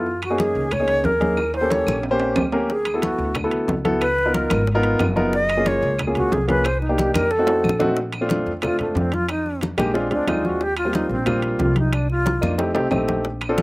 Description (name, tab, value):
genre	Afro-Cuban jazz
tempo	182 BPM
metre	4/4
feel	straight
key	unclear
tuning	A4 = 440 Hz
part	bright reedy alto flute	melody	0.0-12.4 s	A3 to Eb5	-22 LUFS	equal	none
part	warm grand piano	accompaniment	0.0-13.6 s	G3 to C5	-22 LUFS	equal	none
part	upright bass	bass	0.0-13.6 s	Gb1 to Gb2	-26 LUFS	equal	none
part	congas	percussion	0.1-13.6 s	none	-27 LUFS	left 1 dB	none
part	claves	percussion	0.2-13.6 s	none	-36 LUFS	right 1 dB	none
part	timbales	percussion	0.2-13.6 s	none	-28 LUFS	right 3 dB	none
part	bongos	percussion	2.7-13.6 s	none	-32 LUFS	left 3 dB	none
room	little or no reverb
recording	recorded outdoors, with no room sound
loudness	-18 LUFS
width	side -22 dB against mid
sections	0.0-8.0 A section; 8.0-13.6 A section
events	alto flute solo 0.0-8.0, 8.0-13.6; drum fill 1.4-2.7, 7.5-8.0, 12.3-13.2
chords	0.1 Gb69; 1.4 Eb7#11; 2.7 D69; 4.0 Db13; 5.3 Gbmaj7; 6.7 Cm7; 7.3 F7b9; 8.0 Bbmaj7; 9.3 Fm11; 10.0 Bb7; 10.6 Eb69; 11.9 Cm11; 12.6 F7